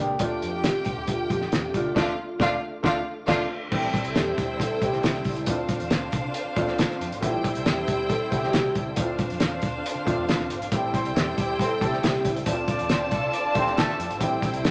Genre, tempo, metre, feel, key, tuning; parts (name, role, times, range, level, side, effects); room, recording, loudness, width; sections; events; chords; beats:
uptempo 1960s-style soul; 137 BPM; 4/4; straight; A4 = 440 Hz
clear upright piano; accompaniment; 0.0-14.7 s; A3 to G4; -32 LUFS; equal
tonewheel organ; sustained chords; 0.0-14.7 s; D3 to A4; -40 LUFS; equal
fretless electric bass; bass; 0.0-14.7 s; G1 to D3; -40 LUFS; equal
warm studio string section; second line; 0.2-14.7 s; D4 to A5; -33 LUFS; equal
cloth-damped thuddy drum kit; drums; 0.2-14.7 s; crash cymbal, hi-hat, kick drum, snare drum; -29 LUFS; equal
vibraphone with soft mallets; melody; 0.4-14.7 s; D4 to A4; -34 LUFS; equal
mellow horn section; second line; 2.0-3.4, 10.9-14.1 s; F3 to D5; -34 LUFS; equal
moderate large studio reverb, RT60 0.9 s; -25 LUFS; mono
0.0-3.7 A section; 3.7-14.7 B section
band accent 2.0-3.7
0.2 Dm; 3.7 Am7; 5.5 Dm7; 7.2 Am7; 9.0 Dm7; 10.7 Am7; 12.5 Dm7
| 0.21 0.65 1.08 1.52 | 1.96 2.40 2.84 3.28 | 3.72 4.16 4.60 5.04 | 5.47 5.91 6.35 6.79 | 7.22 7.66 8.10 8.54 | 8.97 9.41 9.85 10.28 | 10.72 11.16 11.59 12.03 | 12.47 12.90 13.34 13.78 | 14.21 14.65